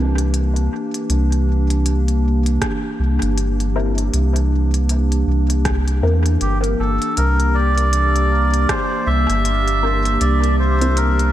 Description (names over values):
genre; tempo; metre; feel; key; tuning
ambient dub; 79 BPM; 4/4; swing 59% on 16ths; C mixolydian; A4 = 441 Hz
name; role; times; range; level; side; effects
warbly tape-like pad; sustained chords; 0.0-11.3 s; E3 to G4; -22 LUFS; equal; chorus, built-in reverb
filtered dub chord stab; stabs; 0.0-10.9 s; C4 to Bb4; -28 LUFS; left 1 dB; phaser, dub echo
soft dub sub bass; bass; 0.0-11.3 s; G1 to E2; -17 LUFS; equal; none
organic electronic drum kit; drums; 0.2-11.3 s; hi-hat, rim click; -27 LUFS; equal; dub echo
electronic kick drum; drums; 2.6-8.9 s; none; -25 LUFS; equal; none
melodica; melody; 6.4-11.3 s; G4 to E5; -20 LUFS; right 1 dB; dub echo
room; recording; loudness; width
moderate lush hall reverb, RT60 3.0 s; dreamy mix soaked in reverb; -15 LUFS; side -12 dB against mid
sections
0.0-7.2 A section; 7.2-11.3 B section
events
filter sweep on synth stab 0.0-7.2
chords
0.0 C7